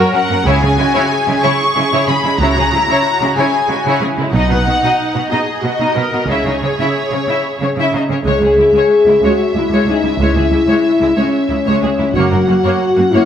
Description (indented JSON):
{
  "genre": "cinematic, epic orchestral film score",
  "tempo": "62 BPM (dotted quarters)",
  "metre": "6/8",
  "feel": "straight",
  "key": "C# dorian",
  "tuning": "A4 = 441 Hz",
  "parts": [
    { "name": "warm symphonic violin section", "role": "melody", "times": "0.0-13.3 s", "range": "C#5 to C#6", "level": "-19 LUFS", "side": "left 2 dB", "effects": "none" },
    { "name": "dark symphonic violin section", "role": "second line", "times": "0.0-13.3 s", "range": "G#3 to E5", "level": "-19 LUFS", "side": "left 2 dB", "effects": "none" },
    { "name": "rich symphonic viola section", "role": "accompaniment", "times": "0.0-13.3 s", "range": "G#3 to A#4", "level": "-21 LUFS", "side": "right 1 dB", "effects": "none" },
    { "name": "rich symphonic cello section", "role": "bass", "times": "0.0-13.2 s", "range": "C#2 to C#3", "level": "-19 LUFS", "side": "right 3 dB", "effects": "none" },
    { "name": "rich studio double bass section", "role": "bass", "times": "0.5-12.3 s", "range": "F#1 to C#2", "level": "-18 LUFS", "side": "right 2 dB", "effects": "none" },
    { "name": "dark French horn section", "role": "sustained chords", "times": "8.3-13.3 s", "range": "C#4 to G#4", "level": "-13 LUFS", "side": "left 2 dB", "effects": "none" }
  ],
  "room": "wet scoring stage reverb, RT60 1.9 s",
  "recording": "none",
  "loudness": "-12 LUFS",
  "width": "side -9 dB against mid",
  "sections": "0.0-8.3 A section; 8.3-13.3 A section",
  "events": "none",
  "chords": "0.5 C#m; 4.3 B; 6.3 C#m; 12.2 F#"
}